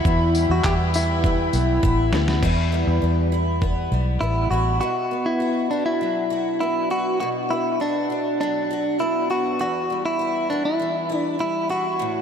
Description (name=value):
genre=acoustic pop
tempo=100 BPM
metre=4/4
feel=straight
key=E minor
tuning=A4 = 442 Hz
part: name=direct-recorded clean electric guitar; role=melody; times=0.0-12.2 s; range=D4 to G4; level=-23 LUFS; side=equal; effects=diffuse ambient delay
part: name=picked twelve-string acoustic guitar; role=accompaniment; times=0.0-12.2 s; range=E2 to F#4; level=-25 LUFS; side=left 1 dB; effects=double-tracked left and right
part: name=warm studio string section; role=sustained chords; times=0.0-2.4 s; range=E4 to B5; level=-31 LUFS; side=left 2 dB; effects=none
part: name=vintage muted fingered electric bass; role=bass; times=0.0-4.8 s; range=A1 to E2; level=-21 LUFS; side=equal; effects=none
part: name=dusty soul sampler-style drum kit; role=drums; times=0.1-3.8 s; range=crash cymbal, handclaps, kick drum, snare drum, tambourine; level=-25 LUFS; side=equal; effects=overdrive
room=moderate huge ambient reverb, RT60 4.7 s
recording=dreamy mix soaked in reverb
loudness=-19 LUFS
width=side -7 dB against mid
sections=0.0-2.4 A section; 2.4-4.8 B section; 4.8-12.2 C section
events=drum fill 1.8-2.4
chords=0.0 Em; 4.8 Bm; 9.6 Em